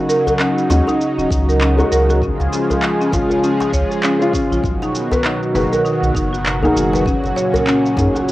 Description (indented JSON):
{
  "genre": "organic downtempo",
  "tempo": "99 BPM",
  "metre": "4/4",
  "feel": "swing 58% on 16ths",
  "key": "Eb minor",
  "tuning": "A4 = 439 Hz",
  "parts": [
    { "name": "warm analog pad", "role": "sustained chords", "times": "0.0-8.3 s", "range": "Bb2 to Ab4", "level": "-18 LUFS", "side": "equal", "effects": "chorus, sidechain pumping" },
    { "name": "buzzing marimba with medium hard mallets", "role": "arpeggios", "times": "0.1-8.3 s", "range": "Db4 to Db5", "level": "-20 LUFS", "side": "equal", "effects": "analog delay" },
    { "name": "electronic shaker and handclaps", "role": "drums", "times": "0.1-8.3 s", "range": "none", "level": "-24 LUFS", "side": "equal", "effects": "small room ambience, cassette tape" },
    { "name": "djembe", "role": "percussion", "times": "0.3-8.3 s", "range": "none", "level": "-24 LUFS", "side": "left 1 dB", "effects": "none" },
    { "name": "felt-muted upright piano", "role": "accompaniment", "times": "0.7-8.1 s", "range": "Ab3 to Ab4", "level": "-22 LUFS", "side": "left 1 dB", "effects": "vintage 12-bit sampler grit, sidechain pumping, analog delay" },
    { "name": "warm sub bass", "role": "bass", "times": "0.7-8.1 s", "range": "Eb1 to Gb2", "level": "-18 LUFS", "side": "equal", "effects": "none" },
    { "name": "electronic kick drum", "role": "drums", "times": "1.3-8.1 s", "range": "none", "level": "-24 LUFS", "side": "equal", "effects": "small room ambience, cassette tape" }
  ],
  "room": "moderate spring reverb, RT60 1.8 s, small room ambience",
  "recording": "home recording on cassette",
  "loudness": "-14 LUFS",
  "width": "side -16 dB against mid",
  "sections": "0.0-8.3 A section",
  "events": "none",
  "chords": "0.0 Ebm7; 2.2 Db; 4.6 Bmaj7; 7.1 Gb",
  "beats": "0.39 1.00 1.60 | 2.21 2.82 3.42 4.03 | 4.64 5.24 5.85 6.45 | 7.06 7.67 8.27"
}